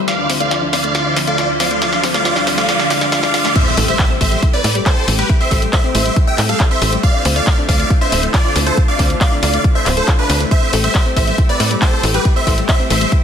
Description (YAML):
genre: uplifting trance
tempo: 138 BPM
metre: 4/4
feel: straight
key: A minor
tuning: A4 = 435 Hz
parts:
  - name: lush unison pad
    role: sustained chords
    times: 0.0-13.2 s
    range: D2 to C5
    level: -24 LUFS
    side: equal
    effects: chorus, sidechain pumping
  - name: riser, noise sweep and impact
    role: sound effects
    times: 0.0-5.3 s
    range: none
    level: -24 LUFS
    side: right 2 dB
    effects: none
  - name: big supersaw lead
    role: melody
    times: 0.1-13.1 s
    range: D4 to G5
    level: -19 LUFS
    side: right 1 dB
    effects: phaser, cassette tape, sidechain pumping, low-pass filter, tape echo
  - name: plucky unison lead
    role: second line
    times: 0.1-13.1 s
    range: B4 to G5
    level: -24 LUFS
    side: equal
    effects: sidechain pumping, tape echo
  - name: analog pluck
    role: arpeggios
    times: 0.1-13.2 s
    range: G3 to F4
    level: -24 LUFS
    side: left 5 dB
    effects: chorus, sidechain pumping, tape echo
  - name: house drum kit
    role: drums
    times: 0.1-13.2 s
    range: crash cymbal, handclaps, hi-hat, snare drum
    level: -20 LUFS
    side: left 1 dB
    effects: high-pass filter on snare, sidechain pumping on hats, high-pass filter on hats, sidechain pumping on cymbals, high-pass filter on cymbals
  - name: electronic kick drum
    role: drums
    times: 3.6-13.2 s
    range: none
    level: -14 LUFS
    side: equal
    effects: none
  - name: tight sequencer bass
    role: bass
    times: 3.8-13.1 s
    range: D1 to A2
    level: -18 LUFS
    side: equal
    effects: sidechain pumping
room: light reverb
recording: dense, heavily limited modern master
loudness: -12 LUFS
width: side -8 dB against mid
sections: 0.0-3.6 A section; 3.6-13.2 B section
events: build-up 0.0-3.6; drum fill 0.0-3.6; riser 0.0-3.6; filter sweep on synth pluck 0.0-3.6; noise sweep 1.8-3.6; drop 3.6-13.2; impact 3.6-5.3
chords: 0.1 Dm7; 3.6 Am7; 7.0 Dm7; 10.5 Am7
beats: | 0.08 0.51 0.95 1.38 | 1.82 2.25 2.69 3.12 | 3.56 3.99 4.43 4.86 | 5.29 5.73 6.17 6.60 | 7.03 7.47 7.90 8.34 | 8.77 9.21 9.64 10.08 | 10.51 10.95 11.38 11.82 | 12.25 12.69 13.12